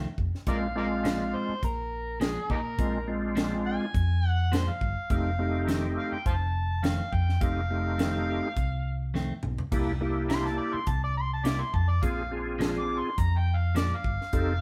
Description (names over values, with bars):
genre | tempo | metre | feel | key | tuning
straight-eighth soul blues | 104 BPM | 4/4 | straight | unclear | A4 = 439 Hz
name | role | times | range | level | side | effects
overdriven harmonica | second line | 0.0-14.6 s | Eb4 to D6 | -36 LUFS | equal | none
clean electric guitar | stabs | 0.0-13.9 s | F2 to E4 | -37 LUFS | equal | none
hollow-body short-scale fingered electric bass | bass | 0.0-14.6 s | F1 to Bb2 | -32 LUFS | equal | none
tight funk drum kit | drums | 0.2-14.5 s | crash cymbal, hi-hat, kick drum, snare drum, toms | -33 LUFS | equal | none
bright tonewheel organ | accompaniment | 0.5-14.5 s | Ab3 to A4 | -33 LUFS | equal | slow rotary speaker, overdrive, chorus vibrato
room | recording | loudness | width
moderate studio reverb, RT60 0.7 s | band playing live in one room | -28 LUFS | mono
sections
0.0-14.6 A section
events
harmonica solo 0.0-14.6; drum fill 9.1-9.7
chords
0.5 Bb7; 5.1 F7; 9.7 C7; 12.0 Bb7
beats
| 0.47 1.05 1.62 2.20 | 2.78 3.36 3.94 4.52 | 5.10 5.67 6.25 6.83 | 7.41 7.99 8.56 9.14 | 9.72 10.29 10.87 11.45 | 12.03 12.60 13.18 13.76 | 14.33